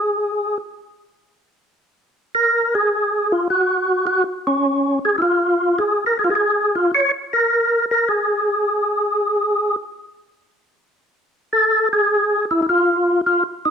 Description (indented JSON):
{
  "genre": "jazz",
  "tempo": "104 BPM",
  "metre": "4/4",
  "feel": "swing 69% on 8ths",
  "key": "unclear",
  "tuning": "A4 = 440 Hz",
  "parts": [
    { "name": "percussive tonewheel organ", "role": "solo", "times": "0.0-13.7 s", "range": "Db4 to Db5", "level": "-16 LUFS", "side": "equal", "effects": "slow rotary speaker, overdrive, chorus vibrato" }
  ],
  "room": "moderate large studio reverb, RT60 1.3 s",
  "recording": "none",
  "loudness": "-16 LUFS",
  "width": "side -7 dB against mid",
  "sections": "0.0-13.7 A section",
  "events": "none",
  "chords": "none"
}